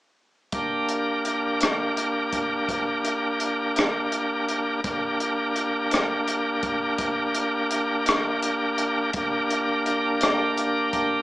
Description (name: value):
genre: slow blues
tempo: 56 BPM (dotted quarters)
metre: 12/8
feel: straight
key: G minor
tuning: A4 = 440 Hz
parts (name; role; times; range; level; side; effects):
- bright tonewheel organ; sustained chords; 0.5-11.2 s; Bb3 to Bb4; -23 LUFS; equal; slow rotary speaker, overdrive
- compact cocktail drum kit; drums; 0.5-11.1 s; hi-hat, kick drum, rim click; -27 LUFS; equal; none
room: moderate studio ambience, RT60 0.5 s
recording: band playing live in one room, small speaker sound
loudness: -22 LUFS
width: side -19 dB against mid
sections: 0.5-11.2 A section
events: none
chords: 0.5 Gm